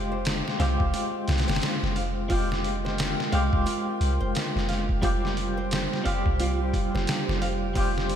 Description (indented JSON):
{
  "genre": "trip hop",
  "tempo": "88 BPM",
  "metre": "4/4",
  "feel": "swing 60% on 16ths",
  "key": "F minor",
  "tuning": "A4 = 440 Hz",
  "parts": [
    { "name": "clean electric guitar", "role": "accompaniment", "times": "0.0-8.2 s", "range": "G3 to G4", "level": "-29 LUFS", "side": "equal", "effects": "tremolo, tape echo" },
    { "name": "warbly tape-like pad", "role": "sustained chords", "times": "0.0-8.2 s", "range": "Ab3 to G5", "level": "-35 LUFS", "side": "right 2 dB", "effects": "chorus, built-in reverb, vintage 12-bit sampler grit" },
    { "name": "soft 808-style bass", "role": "bass", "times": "0.0-8.2 s", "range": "F1 to C2", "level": "-28 LUFS", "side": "equal", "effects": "none" },
    { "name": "flamenco guitar", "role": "arpeggios", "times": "0.1-8.0 s", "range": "F4 to F5", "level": "-35 LUFS", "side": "right 1 dB", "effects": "tape echo" },
    { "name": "trip hop sampler-style drum kit", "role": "drums", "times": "0.3-8.2 s", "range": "hi-hat, kick drum, snare drum", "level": "-29 LUFS", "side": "equal", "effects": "gated reverb" }
  ],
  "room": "moderate lush hall reverb, RT60 2.8 s",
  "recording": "bright 1980s-style digital production",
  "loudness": "-24 LUFS",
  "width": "side -9 dB against mid",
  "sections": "0.0-8.2 A section",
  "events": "none",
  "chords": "0.0 Fmadd9; 5.0 Csus4/F",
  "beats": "0.26 0.94 1.62 | 2.30 2.98 3.67 4.35 | 5.03 5.71 6.39 7.08 | 7.76"
}